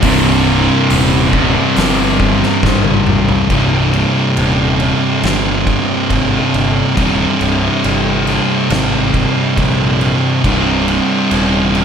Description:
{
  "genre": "stoner and doom metal",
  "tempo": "69 BPM",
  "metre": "4/4",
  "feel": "straight",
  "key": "C minor",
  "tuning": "A4 = 440 Hz",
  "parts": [
    { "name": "cranked stack guitar", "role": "riff", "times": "0.0-3.5 s", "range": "C2 to C3", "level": "-17 LUFS", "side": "equal", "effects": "overdrive" },
    { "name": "thick fuzz guitar", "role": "riff", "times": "0.0-11.8 s", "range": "C2 to C3", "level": "-16 LUFS", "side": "left 8 dB", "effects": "distortion" },
    { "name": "thick fuzz guitar", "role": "riff", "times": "0.0-11.8 s", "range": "C2 to C3", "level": "-16 LUFS", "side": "right 8 dB", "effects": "distortion" },
    { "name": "fuzz picked electric bass", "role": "bass", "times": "0.0-11.8 s", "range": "C1 to Bb1", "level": "-19 LUFS", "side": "equal", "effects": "overdrive" },
    { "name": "oversized low-tuned drum kit", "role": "drums", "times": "0.0-11.8 s", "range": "crash cymbal, hi-hat, kick drum, snare drum, toms", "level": "-19 LUFS", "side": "equal", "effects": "none" }
  ],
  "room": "light reverb",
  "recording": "none",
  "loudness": "-11 LUFS",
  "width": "side -7 dB against mid",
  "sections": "0.0-3.5 A section; 3.5-11.8 B section",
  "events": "drum fill 2.6-3.5",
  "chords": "0.0 Cm"
}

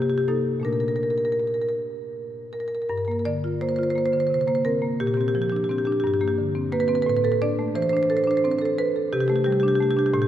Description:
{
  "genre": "classical, contemporary piece for solo marimba",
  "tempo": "52-60 BPM (dotted quarters)",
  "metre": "6/8",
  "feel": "rubato",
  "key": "G minor",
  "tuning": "A4 = 441 Hz",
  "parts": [
    { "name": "marimba with medium hard mallets", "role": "solo", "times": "0.0-10.3 s", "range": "G2 to D5", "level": "-21 LUFS", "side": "equal", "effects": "none" }
  ],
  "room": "wet cathedral reverb, RT60 5.1 s",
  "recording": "none",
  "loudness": "-21 LUFS",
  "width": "side -11 dB against mid",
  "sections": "0.0-2.9 A section; 2.9-10.3 B section",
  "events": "none",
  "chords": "0.0 Cm7; 0.7 Bbmaj7; 2.9 Gm7; 5.0 Bb69; 6.0 Gmadd11; 7.1 Amadd11; 9.1 Csus2"
}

